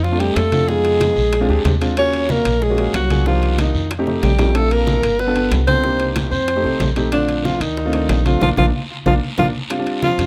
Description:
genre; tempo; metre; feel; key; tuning
Afro-Cuban jazz; 186 BPM; 4/4; straight; Bb major; A4 = 442 Hz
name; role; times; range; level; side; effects
clear alto saxophone; melody; 0.0-10.3 s; D4 to Db5; -22 LUFS; equal; tape echo
mellow trombone; second line; 0.0-10.3 s; D3 to Db4; -26 LUFS; equal; none
upright bass; bass; 0.0-10.3 s; G1 to F2; -22 LUFS; equal; none
bongos; percussion; 0.0-10.2 s; none; -31 LUFS; equal; none
congas; percussion; 0.0-10.3 s; none; -27 LUFS; equal; none
guiro; percussion; 0.0-10.3 s; none; -35 LUFS; equal; none
warm grand piano; accompaniment; 0.1-10.3 s; G3 to A4; -25 LUFS; equal; none
timbales; percussion; 0.2-10.3 s; none; -31 LUFS; equal; none
room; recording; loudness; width
little or no reverb; close, detailed microphones; -17 LUFS; mono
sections
0.0-9.7 A section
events
drum fill 4.1-4.6, 8.4-9.7; band accent 8.4-9.7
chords
0.0 Bbmaj7 (rootless); 0.7 Fm7b5; 1.3 Bb7; 2.0 Ebm7; 3.3 Cm7; 3.9 F7; 4.6 Bbmaj7; 5.2 G7; 5.8 Cm7; 6.5 F7; 7.1 Bbmaj7; 9.7 Ebmaj13 (rootless)

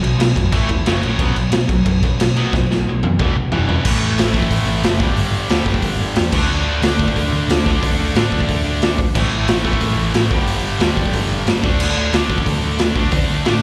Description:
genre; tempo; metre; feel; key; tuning
punk rock; 181 BPM; 4/4; straight; unclear; A4 = 440 Hz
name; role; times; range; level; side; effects
distorted electric guitar; riff; 0.0-13.6 s; E2 to D4; -23 LUFS; equal; overdrive
overdriven picked electric bass; bass; 0.0-13.6 s; E1 to B2; -23 LUFS; equal; none
raw garage drum kit; drums; 0.0-13.5 s; crash cymbal, hi-hat, kick drum, snare drum, toms; -20 LUFS; equal; none
room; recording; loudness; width
little or no reverb; live gig heard through the venue's PA, recital hall reverb; -17 LUFS; mono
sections
0.0-3.9 A section; 3.9-13.6 B section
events
drum fill 2.5-3.9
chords
0.0 B5; 0.5 A5; 0.9 F#5; 1.2 B5; 3.2 E5; 3.9 A5; 5.0 G5; 6.3 D5; 9.2 A5; 10.3 G5; 11.6 D5

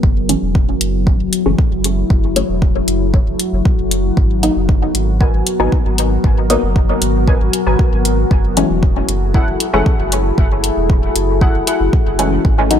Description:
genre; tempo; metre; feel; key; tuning
dub techno; 116 BPM; 4/4; straight; unclear; A4 = 441 Hz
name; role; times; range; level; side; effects
deep dark ambient pad; sustained chords; 0.0-12.8 s; F#3 to A#4; -19 LUFS; left 2 dB; chorus, built-in reverb, sidechain pumping
warm sub bass; bass; 0.0-12.8 s; E1 to G#1; -19 LUFS; equal; sidechain pumping
electronic kick drum; drums; 0.0-12.6 s; none; -14 LUFS; equal; none
filtered dub chord stab; stabs; 0.3-12.8 s; E3 to D#4; -19 LUFS; left 1 dB; chorus, phaser, sidechain pumping, dub echo
electronic hi-hat; drums; 0.3-12.8 s; none; -19 LUFS; left 2 dB; none
warbly dusty pluck; riff; 5.2-12.3 s; E4 to G#5; -24 LUFS; left 1 dB; analog chorus, sidechain pumping, dub echo
room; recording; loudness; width
digital ambience; faint mains hum; -12 LUFS; side -9 dB against mid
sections
0.0-12.4 A section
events
filter sweep on synth stab 0.0-12.4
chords
0.0 F#m9; 4.2 G#m9; 8.3 F#m9

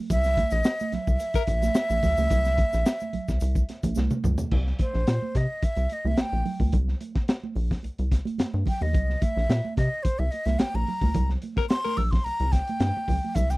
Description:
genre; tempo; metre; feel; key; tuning
funk; 109 BPM; 4/4; straight; C mixolydian; A4 = 442 Hz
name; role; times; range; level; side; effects
breathy jazz flute; melody; 0.1-13.6 s; C5 to E6; -28 LUFS; equal; none
rubbery square bass; bass; 0.1-13.6 s; Bb1 to C3; -25 LUFS; equal; none
crunchy breakbeat drum kit; drums; 0.1-13.6 s; crash cymbal, hi-hat, kick drum, snare drum, toms; -25 LUFS; equal; none
congas; percussion; 0.1-13.5 s; none; -33 LUFS; right 6 dB; none
egg shaker; percussion; 0.1-4.5, 13.4-13.6 s; none; -47 LUFS; left 4 dB; none
raspy tenor saxophone; second line; 1.4, 11.6-12.0 s; Bb4; -29 LUFS; left 10 dB; none
room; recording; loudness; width
little or no reverb; dry, close 1970s-style studio recording; -23 LUFS; side -20 dB against mid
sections
0.0-4.5 A section; 4.5-13.6 B section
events
drum fill 4.0-4.5; flute solo 4.5-13.6; band accent 11.2-13.4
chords
0.0 C7; 4.5 C7(no3)

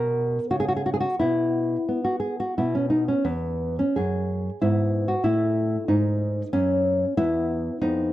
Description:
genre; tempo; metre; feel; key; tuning
classical, baroque-style dance for nylon-string guitar; 84-96 BPM; 3/4; rubato; unclear; A4 = 440 Hz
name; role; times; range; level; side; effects
nylon-string guitar; solo; 0.0-8.1 s; E2 to A#4; -22 LUFS; equal; none
room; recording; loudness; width
studio reverb; dry, close 1970s-style studio recording; -22 LUFS; side -14 dB against mid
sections
0.0-8.1 A section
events
none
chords
0.0 Bmaj7sus2; 1.2 N.C.; 3.3 E; 4.6 E/G#; 5.3 F#m7; 7.2 E5

